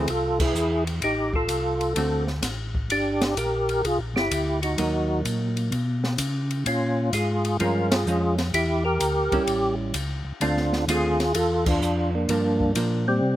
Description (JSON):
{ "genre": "soul jazz organ trio", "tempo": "128 BPM", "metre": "4/4", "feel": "swing 67% on 8ths", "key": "unclear", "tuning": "A4 = 440 Hz", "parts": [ { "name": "percussive tonewheel organ", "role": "melody", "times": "0.0-13.4 s", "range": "G3 to Bb4", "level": "-24 LUFS", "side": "equal", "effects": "slow rotary speaker, chorus vibrato" }, { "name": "vintage hollow-body jazz guitar", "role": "accompaniment", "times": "0.0-13.0 s", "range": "D3 to F#4", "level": "-28 LUFS", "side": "right 2 dB", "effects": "none" }, { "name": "mellow tonewheel organ", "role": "bass", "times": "0.0-13.4 s", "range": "G1 to C#3", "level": "-27 LUFS", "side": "equal", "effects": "chorus vibrato, slow rotary speaker" }, { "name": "open jazz drum kit", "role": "drums", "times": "0.1-12.9 s", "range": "crash cymbal, hi-hat, kick drum, ride cymbal, snare drum", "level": "-30 LUFS", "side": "left 1 dB", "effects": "none" } ], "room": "little or no reverb", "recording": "recorded outdoors, with no room sound", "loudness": "-22 LUFS", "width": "side -13 dB against mid", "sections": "0.0-13.4 A section", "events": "band accent 0.3, 7.8, 11.6", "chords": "0.0 Fmaj7; 1.0 Adim; 2.0 D7; 2.9 Gm; 4.8 Ebm; 5.7 Bsus2; 6.7 Bbm7; 8.5 Em7b5; 9.5 A7; 10.4 Dm7; 12.3 Gm7" }